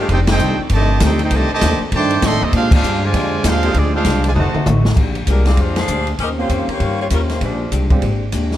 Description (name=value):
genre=jazz, big band swing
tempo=197 BPM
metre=4/4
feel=swing 62% on 8ths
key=Bb mixolydian from 5.0 s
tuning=A4 = 439 Hz
part: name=bright trumpet section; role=melody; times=0.0-4.7 s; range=C4 to D6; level=-20 LUFS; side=right 1 dB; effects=none
part: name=warm trombone section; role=second line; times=0.0-4.6 s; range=C3 to G4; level=-22 LUFS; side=right 4 dB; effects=none
part: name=warm saxophone section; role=sustained chords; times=0.0-0.1, 3.6-4.5 s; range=D3 to G4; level=-27 LUFS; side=left 1 dB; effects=none
part: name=vintage hollow-body jazz guitar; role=accompaniment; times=0.1-8.5 s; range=F2 to C5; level=-25 LUFS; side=left 5 dB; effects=none
part: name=upright bass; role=bass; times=0.1-8.6 s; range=F1 to Bb2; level=-17 LUFS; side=equal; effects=none
part: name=open jazz drum kit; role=drums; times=0.1-8.6 s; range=crash cymbal, hi-hat, kick drum, ride cymbal, snare drum, toms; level=-20 LUFS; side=equal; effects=none
part: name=bright saxophone section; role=melody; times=5.3-7.7 s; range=G3 to F5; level=-22 LUFS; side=left 3 dB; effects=none
part: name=clear baby grand piano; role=accompaniment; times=6.4-8.0 s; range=Ab3 to G4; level=-26 LUFS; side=right 4 dB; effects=none
room=light reverb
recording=none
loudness=-14 LUFS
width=side -12 dB against mid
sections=0.0-5.0 A section; 5.0-8.6 B section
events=band accent 0.2, 2.7, 5.7; drum fill 4.4-5.0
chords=0.1 F13; 2.5 Bb13; 4.4 F7b9; 5.0 Bb13; 6.2 Eb13; 7.4 Bb13